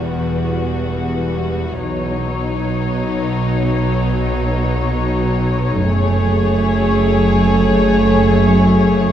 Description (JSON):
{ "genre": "cinematic, suspense film score", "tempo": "free time", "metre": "none", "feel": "none", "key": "unclear", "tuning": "A4 = 439 Hz", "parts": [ { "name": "dark studio violin section", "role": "melody", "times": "0.0-9.1 s", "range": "B4 to C#5", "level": "-24 LUFS", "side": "left 7 dB", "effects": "none" }, { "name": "rich chamber violin section", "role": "second line", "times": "0.0-9.1 s", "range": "D#4 to G#4", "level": "-23 LUFS", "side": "left 4 dB", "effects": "none" }, { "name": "rich studio viola section", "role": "accompaniment", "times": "0.0-9.1 s", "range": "F#3 to A3", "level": "-20 LUFS", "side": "right 2 dB", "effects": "none" }, { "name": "dark studio cello section", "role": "bass", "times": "0.0-9.1 s", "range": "E2 to B2", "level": "-20 LUFS", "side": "right 1 dB", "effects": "none" }, { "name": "dark studio double bass section", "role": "bass", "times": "0.0-9.1 s", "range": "E1 to B1", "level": "-22 LUFS", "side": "right 2 dB", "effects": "none" }, { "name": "bowed-like drone", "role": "drone", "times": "0.0-9.1 s", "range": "F#1 to E2", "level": "-23 LUFS", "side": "left 1 dB", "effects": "built-in reverb" }, { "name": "impact", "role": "sound effects", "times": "0.0-1.8 s", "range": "none", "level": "barely audible", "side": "none", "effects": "none" } ], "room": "light reverb", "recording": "dark, warm production", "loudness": "-14 LUFS", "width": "side -10 dB against mid", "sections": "0.0-9.1 A section", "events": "impact 0.0-1.8", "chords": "0.0 Emadd9; 1.8 Badd9; 5.8 F#madd9" }